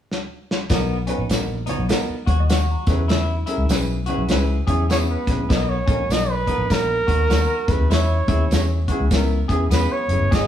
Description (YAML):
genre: uptempo 1960s-style soul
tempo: 100 BPM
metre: 4/4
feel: swing 62% on 8ths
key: B major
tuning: A4 = 435 Hz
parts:
  - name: warm soul drum kit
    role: drums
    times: 0.1-10.5 s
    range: hi-hat, kick drum, snare drum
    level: -22 LUFS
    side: equal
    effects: none
  - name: clear baby grand piano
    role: accompaniment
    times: 0.7-10.5 s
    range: B3 to A#5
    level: -27 LUFS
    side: left 1 dB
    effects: none
  - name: electric guitar through a small old amp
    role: riff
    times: 0.7-10.5 s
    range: B3 to G#4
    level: -29 LUFS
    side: left 2 dB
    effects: none
  - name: vintage muted fingered electric bass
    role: bass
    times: 0.7-10.5 s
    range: F#1 to E2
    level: -21 LUFS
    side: equal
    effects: none
  - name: congas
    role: percussion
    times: 0.7-5.4 s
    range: none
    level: -36 LUFS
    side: right 2 dB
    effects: none
  - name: tambourine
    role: percussion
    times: 0.7-10.5 s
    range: none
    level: -38 LUFS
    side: right 3 dB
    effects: none
  - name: breathy trumpet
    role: melody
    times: 4.9-10.5 s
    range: A#4 to D#5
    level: -23 LUFS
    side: right 2 dB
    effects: none
room: moderate stone room reverb, RT60 1.1 s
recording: band playing live in one room, small room ambience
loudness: -18 LUFS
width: side -10 dB against mid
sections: 0.7-5.5 A section; 5.5-10.5 B section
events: drum fill 0.1-0.7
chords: 0.0 N.C.; 0.7 Bmaj7; 2.8 E6; 5.5 Bmaj7; 7.6 E6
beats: 0.10 | 0.70 1.30 1.90 2.50 | 3.10 3.69 4.29 4.89 | 5.50 6.10 6.70 7.30 | 7.90 8.51 9.11 9.71 | 10.32